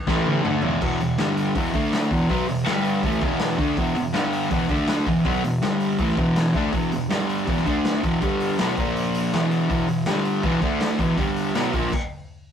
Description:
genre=garage rock duo or trio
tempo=162 BPM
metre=4/4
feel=straight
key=E minor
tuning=A4 = 441 Hz
part: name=fuzz guitar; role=riff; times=0.1-11.9 s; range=E2 to D4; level=-21 LUFS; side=equal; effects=distortion
part: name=raw garage drum kit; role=drums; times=0.1-12.0 s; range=crash cymbal, hi-hat, kick drum, snare drum, toms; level=-27 LUFS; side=equal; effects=none
room=moderate studio reverb, RT60 0.5 s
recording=rough rehearsal-room recording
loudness=-20 LUFS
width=side -8 dB against mid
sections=0.8-12.5 A section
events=drum fill 0.1-0.8; stop 11.9-12.5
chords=0.1 A5; 0.4 E5; 1.2 G5; 1.5 E5; 1.7 D5; 2.1 E5; 2.7 G5; 3.0 E5; 4.1 G5; 4.5 E5; 4.7 D5; 5.1 E5; 5.6 G5; 6.0 E5; 7.1 G5; 7.5 E5; 7.7 D5; 8.0 E5; 8.2 G5; 8.6 B5; 8.8 A#5; 9.3 E5; 10.1 G5; 10.4 E5; 10.6 D5; 11.0 E5; 11.2 G5; 11.5 B5; 11.7 A#5

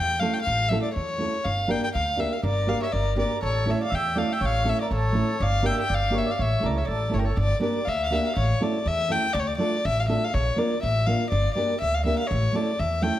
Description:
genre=balkan folk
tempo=122 BPM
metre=2/4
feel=swing 55% on 16ths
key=A phrygian dominant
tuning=A4 = 440 Hz
part: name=warm violin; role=melody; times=0.0-13.2 s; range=Bb4 to G5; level=-26 LUFS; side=left 2 dB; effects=none
part: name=upright bass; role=bass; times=0.0-13.1 s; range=G1 to E2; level=-26 LUFS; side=equal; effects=none
part: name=nylon-string guitar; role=accompaniment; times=0.2-13.2 s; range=A3 to Bb4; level=-28 LUFS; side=right 2 dB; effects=none
part: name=mellow accordion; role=second line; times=2.4-7.4 s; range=G4 to E5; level=-32 LUFS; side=right 6 dB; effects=none
room=moderate recital hall reverb, RT60 1.4 s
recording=none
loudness=-22 LUFS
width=side -13 dB against mid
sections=0.0-7.4 A section; 7.4-13.2 B section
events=none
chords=0.0 A; 1.4 Gm; 3.4 A; 5.4 Gm; 6.4 A; 7.4 Gm; 8.4 A; 9.4 Dm; 10.3 Bb; 11.3 Gm; 12.3 A

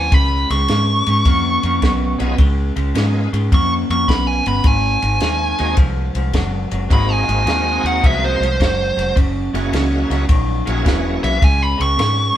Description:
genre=electric blues shuffle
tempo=106 BPM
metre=4/4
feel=swing 67% on 8ths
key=unclear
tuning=A4 = 440 Hz
part: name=smooth overdriven lead guitar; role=melody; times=0.0-12.4 s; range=C5 to Db6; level=-18 LUFS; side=right 1 dB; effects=none
part: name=electric guitar through a small old amp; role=riff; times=0.0-12.3 s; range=Gb2 to Cb4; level=-22 LUFS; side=equal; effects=none
part: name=vintage muted fingered electric bass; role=bass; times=0.0-12.3 s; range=Fb1 to Ab2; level=-20 LUFS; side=equal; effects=none
part: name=compact cocktail drum kit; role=drums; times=0.1-12.2 s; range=kick drum, ride cymbal, snare drum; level=-18 LUFS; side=equal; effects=none
part: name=bright tonewheel organ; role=accompaniment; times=2.2-12.4 s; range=Ab3 to Gb4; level=-24 LUFS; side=right 1 dB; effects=slow rotary speaker, overdrive, chorus vibrato
room=moderate stone room reverb, RT60 1.0 s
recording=band playing live in one room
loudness=-14 LUFS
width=side -11 dB against mid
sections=0.0-12.4 A section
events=lead electric guitar solo 0.0-12.4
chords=0.1 Db7; 4.6 Ab7; 9.2 Gb7; 11.4 Db5

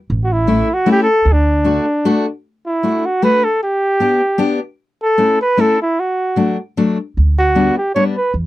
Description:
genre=alpine folk, alpine dance band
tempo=153 BPM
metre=3/4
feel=swing 54% on 8ths, rubato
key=D major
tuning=A4 = 441 Hz
part: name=upright bass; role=bass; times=0.1-1.8, 7.2-8.5 s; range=A1 to E2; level=-15 LUFS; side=right 1 dB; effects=none
part: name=clear flugelhorn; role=melody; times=0.2-8.3 s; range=D4 to C#5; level=-15 LUFS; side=right 1 dB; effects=none
part: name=fingerpicked steel-string acoustic guitar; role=accompaniment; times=0.5-8.2 s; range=F#3 to G4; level=-16 LUFS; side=left 3 dB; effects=none
room=light reverb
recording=dry, close 1970s-style studio recording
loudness=-13 LUFS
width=side -16 dB against mid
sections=0.0-2.5 A section; 2.5-8.5 A section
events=none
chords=0.1 A; 1.3 D; 2.5 Dadd9; 3.6 G; 4.8 A; 6.0 D; 7.2 G/D

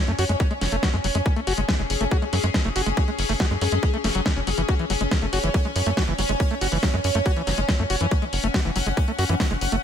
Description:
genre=psychedelic trance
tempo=140 BPM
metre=4/4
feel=straight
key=F# minor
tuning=A4 = 444 Hz
part: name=pulsing gated texture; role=sustained chords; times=0.0-9.8 s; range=C#4 to F#5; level=-27 LUFS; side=left 2 dB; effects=chorus, built-in reverb, sidechain pumping
part: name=screaming distorted acid line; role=riff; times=0.1-9.8 s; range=E3 to F#4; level=-28 LUFS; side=moving between left 6 dB and right 6 dB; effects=distortion, chorus, auto-pan, sidechain pumping, digital delay
part: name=tight sequencer bass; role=bass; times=0.1-9.8 s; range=F#1 to F#2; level=-25 LUFS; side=equal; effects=none
part: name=big-room dance drum kit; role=drums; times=0.1-9.8 s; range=hi-hat, snare drum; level=-28 LUFS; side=left 1 dB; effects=studio reverb
part: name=electronic kick drum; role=drums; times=0.4-9.5 s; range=none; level=-22 LUFS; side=equal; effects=overdrive, studio reverb
room=digital ambience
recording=none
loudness=-20 LUFS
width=side -8 dB against mid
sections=0.0-9.8 A section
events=none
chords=0.0 F#5

